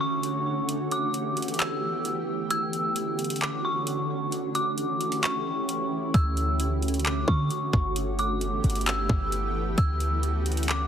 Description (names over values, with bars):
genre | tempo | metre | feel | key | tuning
hip hop, atmospheric cloud-rap | 132 BPM | 4/4 | half-time | D major | A4 = 439 Hz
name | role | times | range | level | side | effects
dark detuned synth bell | melody | 0.0-10.9 s | C#6 to E6 | -30 LUFS | left 1 dB | chorus, tape echo
shimmering ambient pad | sustained chords | 0.0-10.9 s | D3 to G4 | -29 LUFS | right 1 dB | chorus, built-in reverb, sidechain pumping
trap drum kit | drums | 0.2-10.8 s | handclaps, hi-hat, kick drum | -28 LUFS | equal | none
clean 808-style bass | bass | 6.1-10.9 s | G1 to D3 | -27 LUFS | equal | none
room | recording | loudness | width
light reverb | heavily compressed radio sound, multiband compression | -24 LUFS | side -8 dB against mid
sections
0.0-10.9 A section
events
break 0.0-6.1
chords
0.0 Dmaj7; 0.7 G69; 2.5 Dmaj7; 4.3 A7; 6.1 Dmaj7; 8.0 G69; 9.8 Dmaj7